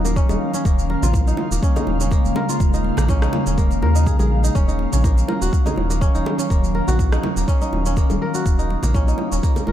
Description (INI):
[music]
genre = afro house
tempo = 123 BPM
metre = 4/4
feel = swing 54% on 16ths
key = Eb minor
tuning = A4 = 440 Hz
[part]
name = ethereal airy pad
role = sustained chords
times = 0.0-9.7 s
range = Db3 to F5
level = -25 LUFS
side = equal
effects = ensemble chorus, built-in reverb, sidechain pumping
[part]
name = kora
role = arpeggios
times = 0.0-9.7 s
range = Bb3 to Bb4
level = -25 LUFS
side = equal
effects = sidechain pumping, low-pass filter, diffuse ambient delay
[part]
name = round analog bass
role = bass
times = 0.0-9.7 s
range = Eb1 to Eb2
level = -20 LUFS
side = equal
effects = tube saturation, sidechain pumping
[part]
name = electronic shaker and rim click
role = drums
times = 0.1-9.7 s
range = none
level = -32 LUFS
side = right 3 dB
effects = none
[part]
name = electronic kick drum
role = drums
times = 0.2-9.5 s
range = none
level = -18 LUFS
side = equal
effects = none
[part]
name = congas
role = percussion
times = 0.2-9.7 s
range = none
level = -30 LUFS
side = left 1 dB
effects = none
[part]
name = bongos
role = percussion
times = 0.3-9.7 s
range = none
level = -31 LUFS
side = right 2 dB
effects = none
[sound]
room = light reverb, small room ambience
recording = none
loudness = -16 LUFS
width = side -11 dB against mid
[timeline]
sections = 0.0-9.7 A section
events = none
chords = 0.0 Ebm9; 0.7 Bbm7/Eb